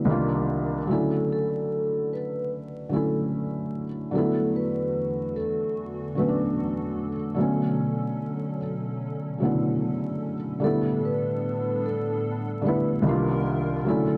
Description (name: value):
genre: lo-fi hip hop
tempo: 74 BPM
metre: 4/4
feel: swing 60% on 16ths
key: unclear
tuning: A4 = 440 Hz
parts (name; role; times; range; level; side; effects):
- felt-muted upright piano; accompaniment; 0.0-14.2 s; C2 to F4; -28 LUFS; equal; cassette tape, low-pass filter
- vibraphone with soft mallets; melody; 0.9-14.2 s; A4 to B4; -32 LUFS; equal; low-pass filter
- hollow soft pad; sustained chords; 4.1-14.2 s; E2 to Bb4; -35 LUFS; equal; ensemble chorus, low-pass filter
room: moderate plate reverb, RT60 2.7 s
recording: worn, warbling old tape, cassette tape, vinyl crackle, warbly pitch drift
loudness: -27 LUFS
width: mono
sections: 0.0-10.6 A section; 10.6-14.2 B section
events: none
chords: 0.1 Cm11; 0.9 Dmaj9; 4.1 E9sus4; 7.4 Bm9; 10.6 A9sus4; 13.1 Cm11